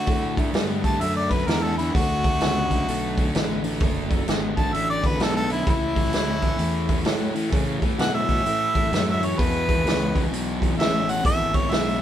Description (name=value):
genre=blues rock power trio and southern rock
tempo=129 BPM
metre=4/4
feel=swing 64% on 8ths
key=unclear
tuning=A4 = 440 Hz
part: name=clear harmonica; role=melody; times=0.0-12.0 s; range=E4 to A5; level=-25 LUFS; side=equal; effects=overdrive
part: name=thick fuzz guitar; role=riff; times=0.0-12.0 s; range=E2 to B3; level=-27 LUFS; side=left 1 dB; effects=distortion
part: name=fuzz fingered electric bass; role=bass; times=0.1-12.0 s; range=F#1 to C#3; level=-28 LUFS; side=equal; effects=overdrive
part: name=vintage drum kit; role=drums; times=0.1-11.9 s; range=hi-hat, kick drum, snare drum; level=-24 LUFS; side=equal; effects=none
room=light reverb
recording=band playing live in one room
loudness=-20 LUFS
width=side -10 dB against mid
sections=0.0-12.0 A section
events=harmonica solo 0.0-12.0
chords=0.0 D; 5.7 A; 9.4 E